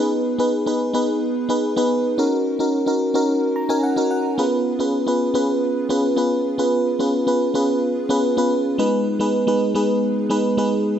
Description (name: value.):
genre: pop.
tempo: 109 BPM.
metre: 4/4.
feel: straight.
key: unclear.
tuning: A4 = 440 Hz.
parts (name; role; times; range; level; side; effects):
FM electric piano with soft pad layer; solo; 0.0-11.0 s; Ab3 to Bb5; -18 LUFS; equal; chorus.
room: moderate lush hall reverb, RT60 2.8 s.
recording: none.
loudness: -18 LUFS.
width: side -9 dB against mid.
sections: 0.0-4.4 A section; 4.4-11.0 A section.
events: FM electric piano fill 3.3-4.4.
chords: 0.0 Abm; 2.2 Ebm7; 4.4 Db7; 8.8 Abm.